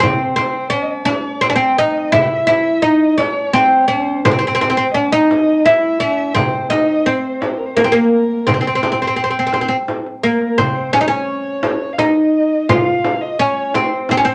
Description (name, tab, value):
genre	Arabic maqam ensemble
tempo	85 BPM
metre	3/4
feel	straight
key	C maqam saba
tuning	A4 = 440 Hz
part	oud	melody	0.0-14.3 s	Bb3 to F4	-16 LUFS	equal	none
part	dark violin	second line	0.0-14.3 s	Bb4 to G5	-26 LUFS	equal	none
part	darbuka	percussion	0.0-14.3 s	none	-32 LUFS	equal	none
part	frame drum	percussion	0.0-14.3 s	none	-23 LUFS	equal	none
room	wet studio reverb, RT60 0.6 s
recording	none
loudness	-16 LUFS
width	mono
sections	0.0-10.6 A section; 10.6-14.3 B section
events	drum fill 1.4-2.1, 9.9-10.6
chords	none